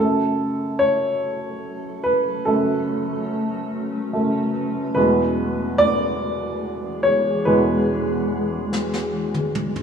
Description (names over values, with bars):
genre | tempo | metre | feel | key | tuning
six-eight pop ballad | 48 BPM (dotted quarters) | 6/8 | straight | F# minor | A4 = 440 Hz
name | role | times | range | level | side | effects
warm upright piano | accompaniment | 0.0-9.8 s | E2 to D5 | -20 LUFS | right 1 dB | none
granular cloud pad | sustained chords | 1.1-9.8 s | E3 to B4 | -26 LUFS | left 1 dB | built-in reverb
jazz brush drum kit | drums | 8.7-9.8 s | snare drum, toms | -27 LUFS | equal | none
room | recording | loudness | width
moderate lush hall reverb, RT60 2.4 s | rough home demo mix | -19 LUFS | side -7 dB against mid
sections
0.0-9.8 A section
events
upright piano solo 0.0-9.8; drum fill 8.7-9.8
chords
0.0 F#m; 5.0 E